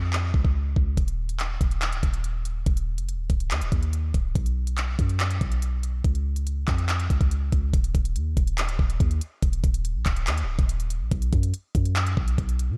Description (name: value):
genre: hip hop, trap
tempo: 142 BPM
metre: 4/4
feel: half-time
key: Eb minor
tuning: A4 = 440 Hz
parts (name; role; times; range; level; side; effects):
- warm 808-style bass; bass; 0.0-12.8 s; Db1 to B2; -28 LUFS; equal; none
- trap drum kit; drums; 0.1-12.7 s; handclaps, hi-hat, kick drum; -27 LUFS; equal; none
room: little or no reverb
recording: none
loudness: -25 LUFS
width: mono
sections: 0.0-7.7 A section; 7.7-12.8 B section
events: break 0.0-1.0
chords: none